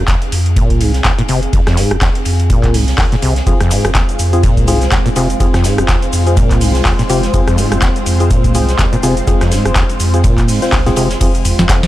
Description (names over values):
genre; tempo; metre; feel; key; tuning
acid house; 124 BPM; 4/4; swing 57% on 16ths; F minor; A4 = 437 Hz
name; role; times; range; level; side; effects
acid bass, saw; riff; 0.0-11.8 s; Eb2 to C3; -17 LUFS; equal; overdrive, wide subtle chorus, digital delay
warm sub bass; bass; 0.0-11.9 s; Eb1 to F2; -17 LUFS; equal; sidechain pumping
warbly tape-like pad; texture; 0.0-11.2 s; C4 to Ab5; -26 LUFS; right 1 dB; chorus, built-in reverb, sidechain pumping
booming analog drum machine; drums; 0.1-11.9 s; cabasa, crash cymbal, handclaps, hi-hat, rim click, snare drum, toms; -19 LUFS; equal; none
electronic kick drum; drums; 0.1-11.8 s; none; -14 LUFS; equal; none
tight funk drum kit; drums; 0.1-11.8 s; hi-hat, ride cymbal, snare drum; -28 LUFS; left 1 dB; sidechain pumping on cymbals, high-pass filter on cymbals, sidechain pumping on hats, high-pass filter on hats, high-pass filter on snare, high-pass filter on room
lush unison pad; sustained chords; 3.5-11.9 s; Ab3 to C5; -21 LUFS; equal; chorus, phaser, sidechain pumping
percussive organ stab; stabs; 3.5-11.3 s; C4 to C5; -20 LUFS; left 2 dB; chorus, vintage 12-bit sampler grit, digital delay
room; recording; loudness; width
little or no reverb; none; -10 LUFS; side -15 dB against mid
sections
0.0-11.2 A section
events
fade-in on ambient pad 0.0-11.2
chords
0.0 Fm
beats
0.08 0.56 1.05 | 1.53 2.02 2.50 2.98 | 3.47 3.95 4.43 4.92 | 5.40 5.89 6.37 6.86 | 7.34 7.82 8.31 8.79 | 9.27 9.76 10.24 10.73 | 11.21 11.69